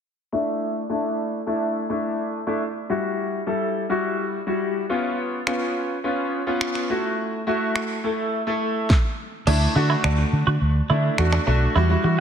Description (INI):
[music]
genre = dance-pop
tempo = 105 BPM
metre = 4/4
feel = straight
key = D major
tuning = A4 = 441 Hz
[part]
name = clear concert grand piano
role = accompaniment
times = 0.3-12.2 s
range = G3 to A4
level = -23 LUFS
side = left 1 dB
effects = lush chorus, sidechain pumping, low-pass filter
[part]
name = pop drum kit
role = drums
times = 5.5-11.5 s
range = crash cymbal, finger snaps, kick drum, snare drum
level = -25 LUFS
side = equal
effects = none
[part]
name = twelve-string electric guitar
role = riff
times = 9.5-12.1 s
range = D4 to F#4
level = -28 LUFS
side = right 7 dB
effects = lush chorus
[part]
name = vintage muted fingered electric bass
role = bass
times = 9.5-12.2 s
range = B1 to E3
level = -19 LUFS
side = equal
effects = sidechain pumping
[sound]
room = moderate lush hall reverb, RT60 1.8 s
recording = dreamy mix soaked in reverb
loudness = -21 LUFS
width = side -8 dB against mid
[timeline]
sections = 0.3-9.5 A section; 9.5-12.2 B section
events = filter sweep on grand piano 0.3-9.5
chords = 0.3 Dsus2; 2.6 Emadd9; 4.9 C#7; 6.9 F#m7; 9.5 Dsus2